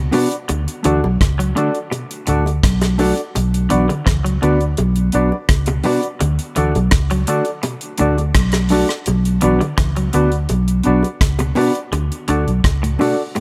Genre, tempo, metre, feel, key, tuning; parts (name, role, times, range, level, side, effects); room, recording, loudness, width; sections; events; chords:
roots reggae; 84 BPM; 4/4; straight; A4 = 441 Hz
semi-hollow electric guitar; arpeggios; 0.0-13.4 s; A2 to F#3; -27 LUFS; equal; spring reverb
vintage muted fingered electric bass; bass; 0.0-13.0 s; B1 to D2; -20 LUFS; equal
mellow electric guitar; accompaniment; 0.1-13.2 s; A3 to F#4; -24 LUFS; equal; tape echo
percussive organ stab; stabs; 0.1-13.2 s; D4 to D5; -26 LUFS; equal; chorus
deep reggae drum kit; drums; 0.1-13.4 s; hi-hat, kick drum, rim click; -22 LUFS; equal
bongos; percussion; 0.1-13.4 s; -27 LUFS; equal
light reverb; -17 LUFS; mono
0.0-13.4 A section
0.5 D; 3.3 Bm; 6.2 D; 9.1 Bm; 11.9 D